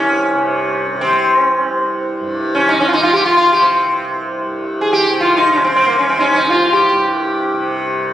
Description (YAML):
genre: indian classical, Hindustani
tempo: free time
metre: none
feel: none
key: C raga bhairavi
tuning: A4 = 438 Hz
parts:
  - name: sitar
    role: melody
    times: 0.0-7.8 s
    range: Bb3 to Ab4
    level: -13 LUFS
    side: equal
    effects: none
  - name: tanpura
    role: drone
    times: 0.0-8.1 s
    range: C2 to C3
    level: -20 LUFS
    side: left 1 dB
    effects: none
room: moderate recital hall reverb, RT60 1.4 s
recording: recorded on a phone in the room, studio reverb, compression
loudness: -12 LUFS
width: side -12 dB against mid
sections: 0.0-4.4 A section; 4.4-8.1 A section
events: none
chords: none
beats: free time